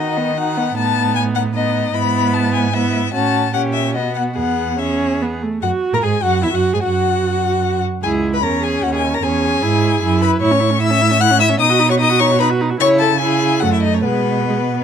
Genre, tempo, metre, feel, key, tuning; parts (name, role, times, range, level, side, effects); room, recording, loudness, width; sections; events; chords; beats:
quick classical-period movement for string quartet; 150 BPM; 3/4; rubato; E major; A4 = 440 Hz
rich violin; melody; 0.0-14.8 s; B4 to F#6; -19 LUFS; left 9 dB
warm violin; second line; 0.0-14.8 s; B3 to F#5; -22 LUFS; left 4 dB
warm viola; accompaniment; 0.0-14.6 s; G#3 to A#4; -19 LUFS; right 3 dB
rich cello; bass; 0.0-14.8 s; C#2 to D#3; -20 LUFS; right 5 dB
light reverb; close, detailed microphones; -14 LUFS; side -8 dB against mid
0.0-5.6 A section; 5.6-14.8 B section
0.0 B/D#; 0.8 B7/A; 1.9 E/G#; 3.1 F#m/A; 3.5 A#dim7; 4.0 B; 4.4 E; 5.6 Eadd9; 6.8 N.C.; 8.0 C#m; 9.2 C#m/E; 10.4 A; 11.6 B; 12.8 C#m; 13.6 F#m; 14.0 G#m/B
0.37 | 0.76 1.16 1.55 | 1.94 2.34 2.74 | 3.14 3.54 3.95 | 4.37 4.79 5.21 | 5.62 6.03 6.43 | 6.83 7.23 7.63 | 8.03 8.43 8.83 | 9.23 9.63 10.02 | 10.42 10.81 11.21 | 11.60 12.00 12.40 | 12.81 13.21 13.62 | 14.05 14.48